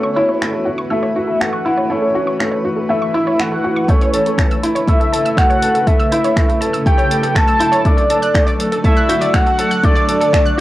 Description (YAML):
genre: piano and strings electronica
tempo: 121 BPM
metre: 4/4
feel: straight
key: unclear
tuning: A4 = 442 Hz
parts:
  - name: warm velvety synth lead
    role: melody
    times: 0.0-10.6 s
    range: C#5 to A5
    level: -17 LUFS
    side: equal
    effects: chorus, tremolo, cassette tape
  - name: granular cloud pad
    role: sustained chords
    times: 0.0-10.6 s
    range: C#3 to D5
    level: -24 LUFS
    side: equal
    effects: built-in reverb, sidechain pumping, cassette tape
  - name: analog pluck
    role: arpeggios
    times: 0.0-10.6 s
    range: A4 to G6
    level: -24 LUFS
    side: right 1 dB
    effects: chorus, sidechain pumping, cassette tape, analog delay
  - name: felt-muted upright piano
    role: riff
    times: 0.0-10.6 s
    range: A3 to A4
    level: -19 LUFS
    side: equal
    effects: cassette tape
  - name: deep house drum kit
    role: drums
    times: 0.4-10.6 s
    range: finger snaps, hi-hat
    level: -24 LUFS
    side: equal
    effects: cassette tape
  - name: electronic kick drum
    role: drums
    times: 3.9-10.4 s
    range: none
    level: -15 LUFS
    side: equal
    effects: cassette tape
room: wet small room reverb, RT60 0.5 s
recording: home recording on cassette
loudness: -13 LUFS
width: side -15 dB against mid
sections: 0.0-10.6 A section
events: build-up 0.0-10.6; filter sweep on synth arpeggio sound 0.0-10.6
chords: 0.0 F#m7; 3.9 A; 7.9 D